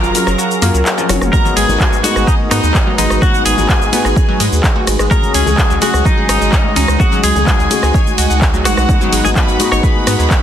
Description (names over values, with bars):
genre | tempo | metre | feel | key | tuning
progressive house | 127 BPM | 4/4 | straight | G# dorian | A4 = 440 Hz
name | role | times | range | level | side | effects
clean electric guitar | melody | 0.0-10.4 s | D#4 to C#5 | -19 LUFS | equal | wide subtle chorus, dub echo
clear studio violin section | second line | 0.0-10.4 s | D#5 to C#6 | -24 LUFS | equal | sidechain pumping, digital delay
warm analog pad | sustained chords | 0.0-10.4 s | F#3 to E#5 | -22 LUFS | right 2 dB | chorus, sidechain pumping
analog pluck | arpeggios | 0.0-10.3 s | E#3 to F#6 | -22 LUFS | equal | chorus, sidechain pumping, digital delay
felt-muted upright piano | stabs | 0.0-10.4 s | G#2 to C#5 | -20 LUFS | left 5 dB | sidechain pumping, digital delay
round analog bass | bass | 0.0-10.3 s | F#1 to G#2 | -17 LUFS | equal | sidechain pumping
deep house drum kit | drums | 0.0-10.4 s | handclaps, hi-hat, ride cymbal, rim click, shaker, toms | -18 LUFS | equal | sidechain pumping on perc, sidechain pumping on hats, sidechain pumping on toms, sidechain pumping on cymbals
electronic kick drum | drums | 1.3-10.4 s | none | -14 LUFS | equal | none
congas | percussion | 1.3-10.0 s | none | -26 LUFS | left 1 dB | none
room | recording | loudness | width
light reverb, digital ambience | dense, heavily limited modern master | -10 LUFS | side -10 dB against mid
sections
0.0-10.4 A section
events
kick drops out 0.4-1.3; drum fill 1.1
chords
0.0 F#maj7; 1.3 G#m7; 5.1 C#sus4; 8.9 G#m7